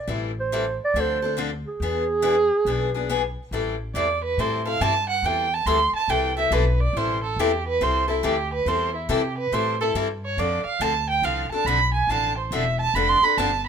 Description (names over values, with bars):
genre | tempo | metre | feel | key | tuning
acoustic string swing (jazz manouche) | 140 BPM | 4/4 | swing 65% on 8ths | A minor | A4 = 439 Hz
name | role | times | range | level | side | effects
dark clarinet | melody | 0.0-3.3 s | G#4 to D5 | -22 LUFS | right 3 dB | none
picked steel-string acoustic guitar | accompaniment | 0.1-13.5 s | D3 to A4 | -26 LUFS | left 6 dB | none
upright bass | bass | 0.1-13.7 s | E1 to C3 | -28 LUFS | left 1 dB | none
warm violin | second line | 4.0-13.7 s | E4 to C6 | -22 LUFS | right 4 dB | none
room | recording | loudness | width
light reverb | minimal, uncompressed stereo recording | -20 LUFS | side -7 dB against mid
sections
0.0-3.5 A section; 3.5-13.7 B section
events
violin solo 3.5-13.7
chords
0.1 Am7; 1.0 Dm7; 1.8 E7; 3.5 Am7; 10.4 Dm7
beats
| 0.09 0.52 0.95 1.38 | 1.81 2.24 2.67 3.10 | 3.52 3.95 4.38 4.81 | 5.24 5.67 6.10 6.53 | 6.95 7.38 7.81 8.24 | 8.67 9.09 9.52 9.95 | 10.38 10.81 11.23 11.66 | 12.09 12.52 12.95 13.37